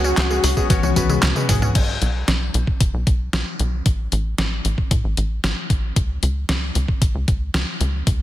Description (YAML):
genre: synthwave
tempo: 114 BPM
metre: 4/4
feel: straight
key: unclear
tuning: A4 = 439 Hz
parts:
  - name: expressive synth lead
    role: melody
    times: 0.0-1.2 s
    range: F#4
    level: -28 LUFS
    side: right 1 dB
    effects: wide subtle chorus, tape echo
  - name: string machine, violins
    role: second line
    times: 0.0-1.2 s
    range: F#4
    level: -30 LUFS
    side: left 2 dB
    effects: ensemble chorus, digital delay
  - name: warm analog pad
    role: sustained chords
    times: 0.0-1.7 s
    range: C#3 to F#4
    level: -36 LUFS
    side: right 2 dB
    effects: none
  - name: analog pluck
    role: arpeggios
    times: 0.0-1.7 s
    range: F#3 to C#4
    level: -29 LUFS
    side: equal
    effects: chorus, cassette tape, digital delay
  - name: bright electric grand piano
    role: stabs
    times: 0.0-1.7 s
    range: B3 to C#5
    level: -27 LUFS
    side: left 5 dB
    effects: digital delay
  - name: tight sequencer bass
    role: bass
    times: 0.0-8.2 s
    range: F#1 to A2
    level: -22 LUFS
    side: equal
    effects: sidechain pumping
  - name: detuned 8-bit digital drum machine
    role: drums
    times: 0.0-8.2 s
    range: crash cymbal, handclaps, hi-hat, snare drum, tambourine, toms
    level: -22 LUFS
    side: left 1 dB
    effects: small room ambience
  - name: electronic kick drum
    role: drums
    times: 0.6-8.2 s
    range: none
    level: -19 LUFS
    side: equal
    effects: small room ambience
room: light reverb, digital ambience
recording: dense, heavily limited modern master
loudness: -18 LUFS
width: side -14 dB against mid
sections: 0.0-1.8 A section; 1.8-8.2 B section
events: drum fill 0.7-1.8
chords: 0.0 C#7sus4; 1.8 B5; 3.9 N.C.; 6.0 C#5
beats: 0.17 0.70 1.23 | 1.75 2.28 2.81 3.33 | 3.86 4.38 4.91 5.44 | 5.96 6.49 7.02 7.54 | 8.07